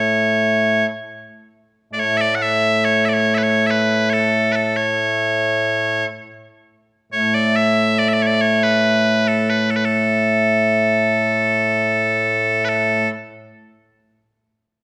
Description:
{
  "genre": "scottish traditional, Scottish pipe music",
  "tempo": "70 BPM",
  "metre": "3/4",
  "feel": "straight",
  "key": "A major",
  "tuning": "A4 = 440 Hz",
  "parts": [
    { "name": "loud bright bagpipes", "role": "solo", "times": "0.0-13.1 s", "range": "A2 to F#5", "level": "-18 LUFS", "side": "equal", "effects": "none" }
  ],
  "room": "moderate scoring stage reverb, RT60 1.6 s",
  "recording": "dark, warm production",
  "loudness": "-18 LUFS",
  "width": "mono",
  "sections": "0.0-12.7 A section; 12.7-14.8 B section",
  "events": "none",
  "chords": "none",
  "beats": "0.70 1.55 | 2.41 3.27 4.12 | 4.98 5.84 6.70 | 7.55 8.41 9.27 | 10.12 10.98 11.84 | 12.70"
}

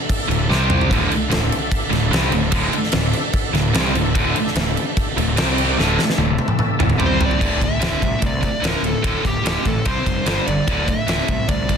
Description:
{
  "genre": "hard rock",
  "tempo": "147 BPM",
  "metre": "4/4",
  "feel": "straight",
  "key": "unclear",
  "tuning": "A4 = 440 Hz",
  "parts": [
    { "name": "overdriven tonewheel organ", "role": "sustained chords", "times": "0.0-7.4 s", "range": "C4 to E5", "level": "-28 LUFS", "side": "equal", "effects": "chorus vibrato, slow rotary speaker" },
    { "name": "huge arena drum kit", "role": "drums", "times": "0.1-11.8 s", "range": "crash cymbal, kick drum, ride cymbal, snare drum, toms", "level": "-20 LUFS", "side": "equal", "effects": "none" },
    { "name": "high-gain distorted guitar", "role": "riff", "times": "0.3-11.8 s", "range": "D2 to C4", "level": "-21 LUFS", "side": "right 1 dB", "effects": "distortion" },
    { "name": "fuzz picked electric bass", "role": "bass", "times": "0.3-11.7 s", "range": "D1 to C2", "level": "-23 LUFS", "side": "equal", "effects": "overdrive" },
    { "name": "dark smooth lead guitar", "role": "melody", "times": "7.1-11.8 s", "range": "G4 to E5", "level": "-24 LUFS", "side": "equal", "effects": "overdrive, tape echo" }
  ],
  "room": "moderate large studio reverb, RT60 1.3 s, small room ambience",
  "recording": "dense, heavily limited modern master",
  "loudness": "-16 LUFS",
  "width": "side -7 dB against mid",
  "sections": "0.0-7.4 A section; 7.4-11.8 B section",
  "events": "drum fill 0.5-0.9, 5.8-7.4",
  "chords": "0.5 C5; 0.9 D5; 5.4 C5; 5.8 D5; 7.0 C5; 7.4 D5; 9.9 C5; 10.3 G5; 10.7 D5",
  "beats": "0.09 0.49 | 0.90 1.31 1.72 2.12 | 2.53 2.94 3.34 3.75 | 4.16 4.56 4.97 5.38 | 5.78 6.19 6.60 7.00 | 7.41 7.82 8.23 8.63 | 9.04 9.45 9.86 10.27 | 10.67 11.08 11.49"
}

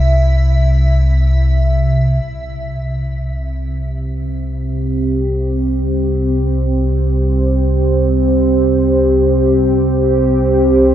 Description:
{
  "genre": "dark ambient drone",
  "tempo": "free time",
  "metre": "none",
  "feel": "none",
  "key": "C major",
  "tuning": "A4 = 440 Hz",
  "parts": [
    { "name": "deep rumbling drone", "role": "drone", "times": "0.0-10.9 s", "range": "C2 to C3", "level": "-15 LUFS", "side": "equal", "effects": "built-in reverb, lush chorus" },
    { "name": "icy glass pad", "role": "texture", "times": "0.0-2.3 s", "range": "E5", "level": "-24 LUFS", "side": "right 1 dB", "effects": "chorus, built-in reverb" },
    { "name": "deep dark ambient pad", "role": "sustained chords", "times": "3.6-10.9 s", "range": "C4 to C5", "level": "-15 LUFS", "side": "right 1 dB", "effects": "chorus, built-in reverb" }
  ],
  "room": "wet huge ambient reverb, RT60 8.3 s",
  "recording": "worn, warbling old tape, cassette tape, warbly pitch drift",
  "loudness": "-13 LUFS",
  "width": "side -10 dB against mid",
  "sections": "0.0-2.2 A section; 2.2-10.9 B section",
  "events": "filter sweep on synth drone 0.0-2.2, 2.2-10.9",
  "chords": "0.0 C; 2.2 C5",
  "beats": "free time"
}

